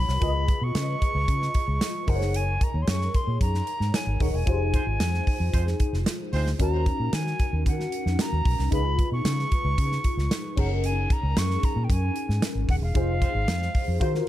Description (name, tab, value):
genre	polished 1980s jazz-funk pop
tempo	113 BPM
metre	4/4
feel	straight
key	unclear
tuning	A4 = 440 Hz
part	breathy concert flute	melody	0.0-14.3 s	F5 to Db6	-31 LUFS	equal	none
part	FM electric piano with soft pad layer	accompaniment	0.0-14.3 s	Db4 to Eb5	-31 LUFS	left 2 dB	ensemble chorus
part	vintage muted fingered electric bass	bass	0.0-14.2 s	Eb1 to Eb3	-26 LUFS	equal	none
part	modern studio drum kit	drums	0.1-14.2 s	crash cymbal, hi-hat, kick drum, snare drum	-26 LUFS	equal	none
part	mellow horn section	second line	4.7-6.5, 13.2-14.1 s	Gb3 to C5	-37 LUFS	right 4 dB	digital delay
room	little or no reverb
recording	dark, warm production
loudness	-22 LUFS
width	side -13 dB against mid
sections	0.0-14.3 A section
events	band accent 4.5-6.6, 13.0-14.3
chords	0.2 Db9; 2.1 Gb69; 4.5 Fm7; 6.6 Ebm7; 8.7 Db9; 10.6 Gb69; 13.0 Fm7